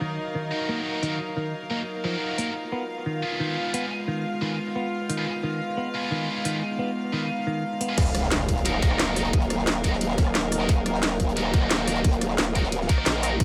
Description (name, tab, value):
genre	dark technical drum and bass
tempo	177 BPM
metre	4/4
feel	straight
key	Eb minor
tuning	A4 = 441 Hz
part	metallic inharmonic drone	sustained chords	0.0-13.4 s	Eb3 to Bb4	-34 LUFS	equal	chorus, built-in reverb, sidechain pumping
part	clean electric guitar	arpeggios	0.0-7.9 s	Eb3 to Cb4	-34 LUFS	equal	sidechain pumping, low-pass filter, delay
part	warm studio string section	texture	0.0-13.4 s	Eb4 to F5	-35 LUFS	equal	sidechain pumping
part	heavy high-gain guitar	stabs	0.5-13.3 s	Eb4 to Cb5	-34 LUFS	equal	distortion, low-pass filter, delay
part	drum and bass drum kit	drums	1.0-13.4 s	crash cymbal, hi-hat, rim click, snare drum	-29 LUFS	equal	low-pass filter on snare, low-pass filter on hats, low-pass filter on cymbals, low-pass filter on room
part	growl bass	bass	8.0-13.4 s	Eb1 to Bb1	-30 LUFS	equal	chorus, tube saturation
part	crunchy breakbeat drum kit	drums	8.0-13.4 s	hi-hat, snare drum	-40 LUFS	equal	none
part	electronic kick drum	drums	8.0-13.4 s	none	-24 LUFS	equal	none
part	impact	sound effects	8.0-9.3 s	none	-34 LUFS	equal	none
room	light reverb, digital ambience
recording	none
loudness	-26 LUFS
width	mono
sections	0.0-8.0 A section; 8.0-13.4 B section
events	drop 8.0-13.4; impact 8.0-9.3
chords	0.0 Ebm; 2.6 Fdim; 8.0 Ebm